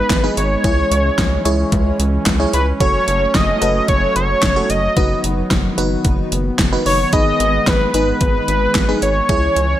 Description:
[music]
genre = synth-pop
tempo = 111 BPM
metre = 4/4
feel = straight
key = B mixolydian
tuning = A4 = 440 Hz
[part]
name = wide unison lead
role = melody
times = 0.0-9.8 s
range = B4 to D#5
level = -18 LUFS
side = equal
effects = none
[part]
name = warm analog pad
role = sustained chords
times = 0.0-9.8 s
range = D#3 to D#4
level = -23 LUFS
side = right 1 dB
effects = chorus
[part]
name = rubbery square bass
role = bass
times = 0.0-9.8 s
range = F#1 to C#2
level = -20 LUFS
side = equal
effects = none
[part]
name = pop drum kit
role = drums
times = 0.1-9.7 s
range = handclaps, hi-hat, kick drum, snare drum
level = -18 LUFS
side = equal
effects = overdrive, gated reverb
[part]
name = FM electric piano with soft pad layer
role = accompaniment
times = 0.2-9.7 s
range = D#4 to C#5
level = -22 LUFS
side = equal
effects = chorus
[sound]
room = little or no reverb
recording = none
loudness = -14 LUFS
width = side -12 dB against mid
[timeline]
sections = 0.0-9.8 A section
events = none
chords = 0.0 G#m; 0.6 C#m; 2.8 F#m; 5.0 B/F#; 7.1 G#m; 9.3 C#m

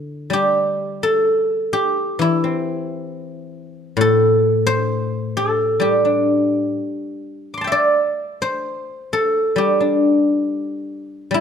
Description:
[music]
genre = chinese traditional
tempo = 62-70 BPM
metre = 2/4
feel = rubato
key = unclear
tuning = A4 = 440 Hz
[part]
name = guzheng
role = solo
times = 0.0-11.4 s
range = A2 to D6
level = -17 LUFS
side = equal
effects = none
[sound]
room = light reverb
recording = close, detailed microphones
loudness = -16 LUFS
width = side -7 dB against mid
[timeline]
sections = 0.3-11.4 A section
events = none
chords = none

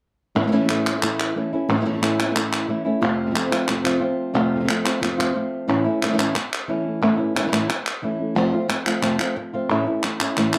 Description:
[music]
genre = flamenco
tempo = 180 BPM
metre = 4/4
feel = straight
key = unclear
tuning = A4 = 440 Hz
[part]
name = flamenco guitar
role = melody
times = 0.4-10.6 s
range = F2 to F4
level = -24 LUFS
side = equal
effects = plate reverb
[part]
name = flamenco guitar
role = stabs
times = 0.4-10.6 s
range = F2 to F4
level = -29 LUFS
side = equal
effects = none
[part]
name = palmas hand claps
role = percussion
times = 0.4-10.6 s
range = none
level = -27 LUFS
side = equal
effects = none
[sound]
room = moderate studio reverb, RT60 0.5 s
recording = none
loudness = -22 LUFS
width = mono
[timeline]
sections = 0.4-10.6 A section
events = none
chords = 0.4 A; 3.0 F; 5.7 A; 8.4 F; 9.7 A

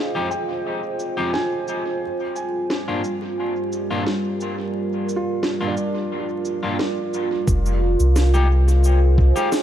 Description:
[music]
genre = ambient dub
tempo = 88 BPM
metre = 4/4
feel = swing 53% on 16ths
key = F dorian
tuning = A4 = 445 Hz
[part]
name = deep dark ambient pad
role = sustained chords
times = 0.0-9.6 s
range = G3 to F5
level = -24 LUFS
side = right 1 dB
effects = chorus, built-in reverb
[part]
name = felt-muted upright piano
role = arpeggios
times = 0.0-7.5 s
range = D4 to Ab5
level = -31 LUFS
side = right 2 dB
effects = tape echo
[part]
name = electric guitar at the edge of break-up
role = stabs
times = 0.1-9.5 s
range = F2 to G4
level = -28 LUFS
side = left 3 dB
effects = dub echo
[part]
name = electronic shaker and snare drum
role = drums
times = 0.3-9.6 s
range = none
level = -28 LUFS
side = equal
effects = overdrive, low-pass filter on perc, low-pass filter on snare, low-pass filter on room, dub echo
[part]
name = warm sub bass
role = bass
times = 7.5-9.3 s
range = F1 to C2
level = -15 LUFS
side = equal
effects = none
[part]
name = electronic kick drum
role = drums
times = 7.5-9.3 s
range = none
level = -19 LUFS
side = equal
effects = none
[sound]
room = light reverb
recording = vinyl crackle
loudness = -19 LUFS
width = side -11 dB against mid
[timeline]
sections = 0.0-7.5 A section; 7.5-9.6 B section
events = filter sweep on ambient pad 0.0-7.5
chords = 0.0 Fm9; 2.0 Gm7; 7.5 Fm9

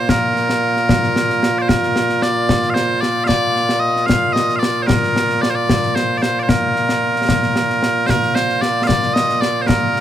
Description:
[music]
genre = scottish traditional, Scottish pipe music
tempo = 75 BPM (dotted quarters)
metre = 6/8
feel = straight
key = Bb major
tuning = A4 = 443 Hz
[part]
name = loud bright bagpipes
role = melody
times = 0.0-10.0 s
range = Bb2 to F5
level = -16 LUFS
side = right 1 dB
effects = none
[part]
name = concert snare drum and concert bass drum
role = drums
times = 0.1-10.0 s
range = none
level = -19 LUFS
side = left 1 dB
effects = none
[sound]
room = light reverb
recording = none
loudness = -14 LUFS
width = side -11 dB against mid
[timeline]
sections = 0.0-10.0 A section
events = none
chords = none

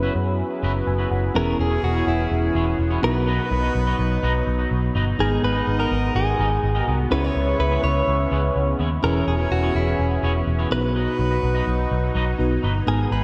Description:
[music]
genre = pop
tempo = 125 BPM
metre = 4/4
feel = straight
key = unclear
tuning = A4 = 440 Hz
[part]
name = direct-recorded clean electric guitar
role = melody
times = 0.0-13.2 s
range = E4 to C#5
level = -29 LUFS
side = equal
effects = spring reverb, tape echo
[part]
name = FM electric piano with tremolo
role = accompaniment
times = 0.0-13.2 s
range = G#2 to A#5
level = -29 LUFS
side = equal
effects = none
[part]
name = sweeping resonant pad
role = sustained chords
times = 0.0-13.2 s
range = C#3 to B4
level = -32 LUFS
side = equal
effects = chorus
[part]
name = twangy electric guitar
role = riff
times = 0.0-13.2 s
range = B3 to D#5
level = -34 LUFS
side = equal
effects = lush chorus, tape echo
[part]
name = vintage muted picked electric bass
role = bass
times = 0.0-13.2 s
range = E1 to F#2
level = -25 LUFS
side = equal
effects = none
[part]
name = warm horn section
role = stabs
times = 1.4-13.2 s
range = B3 to E5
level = -32 LUFS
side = equal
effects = none
[sound]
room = wet lush hall reverb, RT60 2.6 s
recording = dreamy mix soaked in reverb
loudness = -21 LUFS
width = mono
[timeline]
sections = 0.0-1.4 A section; 1.4-13.2 B section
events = FM electric piano fill 0.6-1.4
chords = 0.0 F#7sus4; 1.4 E6; 3.0 B; 5.2 G#madd9; 7.1 C#m7; 9.0 E6; 10.7 B

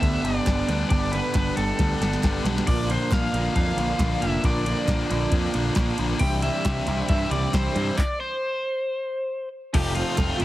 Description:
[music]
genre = indie rock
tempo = 136 BPM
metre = 4/4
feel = straight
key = C major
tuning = A4 = 442 Hz
[part]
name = crunchy overdriven guitar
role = melody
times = 0.0-10.4 s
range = F4 to G5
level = -29 LUFS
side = left 1 dB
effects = none
[part]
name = mellow tonewheel organ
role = sustained chords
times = 0.0-10.4 s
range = D4 to A5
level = -37 LUFS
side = equal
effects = none
[part]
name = electric guitar through a small old amp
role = riff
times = 0.0-10.4 s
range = G2 to F4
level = -28 LUFS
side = right 4 dB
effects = lush chorus
[part]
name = high-gain distorted guitar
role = riff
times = 0.0-10.4 s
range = F2 to E4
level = -29 LUFS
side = left 5 dB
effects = distortion
[part]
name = growling picked electric bass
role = bass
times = 0.0-10.4 s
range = F1 to G2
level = -27 LUFS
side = equal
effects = overdrive
[part]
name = soft vintage rhythm box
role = drums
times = 0.0-10.4 s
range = crash cymbal, handclaps, kick drum, ride cymbal, snare drum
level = -26 LUFS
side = equal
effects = overdrive
[part]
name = group handclap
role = percussion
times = 0.5-10.3 s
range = none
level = -39 LUFS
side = right 4 dB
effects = none
[sound]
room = little or no reverb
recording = heavily compressed radio sound, multiband compression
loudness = -21 LUFS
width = side -15 dB against mid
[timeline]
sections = 0.0-9.7 A section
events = drum fill 1.8-2.7; stop 8.0-9.7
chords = 0.0 G; 2.7 Bb; 6.2 Cadd9; 9.7 F

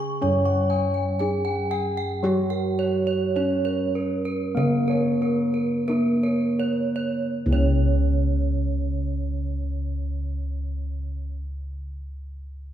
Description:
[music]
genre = Javanese gamelan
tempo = 40-65 BPM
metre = 4/4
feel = straight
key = unclear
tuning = A4 = 442 Hz
[part]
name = gamelan-type bronze metallophone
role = melody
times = 0.0-11.4 s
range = A#3+20c to C#5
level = -26 LUFS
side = right 1 dB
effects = none
[part]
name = gamelan-type bronze metallophone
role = accompaniment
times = 0.0-11.3 s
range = C#3 to C#4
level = -30 LUFS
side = left 1 dB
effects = none
[part]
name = gamelan-type bronze metallophone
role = arpeggios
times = 0.0-11.3 s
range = A#4+20c to C#6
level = -31 LUFS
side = right 6 dB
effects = none
[part]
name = gamelan-type bossed gongs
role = bass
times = 0.0-11.3 s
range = C#2 to F#4+30c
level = -26 LUFS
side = equal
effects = none
[part]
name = gamelan-type bossed gongs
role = arpeggios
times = 0.2-11.3 s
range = A#4+20c to G#5-40c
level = -32 LUFS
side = left 2 dB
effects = none
[sound]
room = wet recital hall reverb, RT60 1.6 s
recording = recorded in a church or concert hall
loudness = -22 LUFS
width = side -10 dB against mid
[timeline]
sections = 0.0-7.3 A section; 7.3-12.7 B section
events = slowing down 0.0-7.3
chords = none

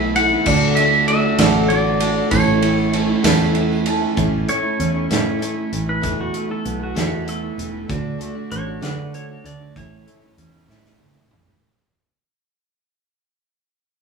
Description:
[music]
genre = folk rock and heartland rock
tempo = 65 BPM (dotted quarters)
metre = 6/8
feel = straight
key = A major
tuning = A4 = 435 Hz
[part]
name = pedal steel guitar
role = melody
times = 0.0-10.4 s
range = F#4 to F#5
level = -22 LUFS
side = equal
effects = none
[part]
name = clear upright piano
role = accompaniment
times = 0.0-4.2 s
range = C#4 to A5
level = -26 LUFS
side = right 4 dB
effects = none
[part]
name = picked steel-string acoustic guitar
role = accompaniment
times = 0.0-11.6 s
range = E2 to F#4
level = -25 LUFS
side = left 8 dB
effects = none
[part]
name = electric guitar through a small old amp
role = riff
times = 0.0-11.6 s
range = E2 to F#4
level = -23 LUFS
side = right 6 dB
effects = none
[part]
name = fingered electric bass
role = bass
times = 0.0-11.6 s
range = E1 to D3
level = -23 LUFS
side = right 2 dB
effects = none
[part]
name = natural country drum kit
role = drums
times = 0.2-11.6 s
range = crash cymbal, hi-hat, kick drum, ride cymbal, snare drum, toms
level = -23 LUFS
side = right 1 dB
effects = none
[part]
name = tambourine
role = percussion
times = 0.5-3.8 s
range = none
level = -36 LUFS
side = right 2 dB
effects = none
[sound]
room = moderate studio reverb, RT60 0.6 s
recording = band playing live in one room, small room ambience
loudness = -16 LUFS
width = side -5 dB against mid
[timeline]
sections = 0.0-4.2 A section; 4.2-11.6 B section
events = upright piano fill 3.2-4.2; fade-out 4.2-11.6; pedal steel guitar solo 4.2-11.6; drum fill 10.7-11.6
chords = 0.5 D; 2.3 A; 6.0 Esus4; 7.9 D; 9.8 A

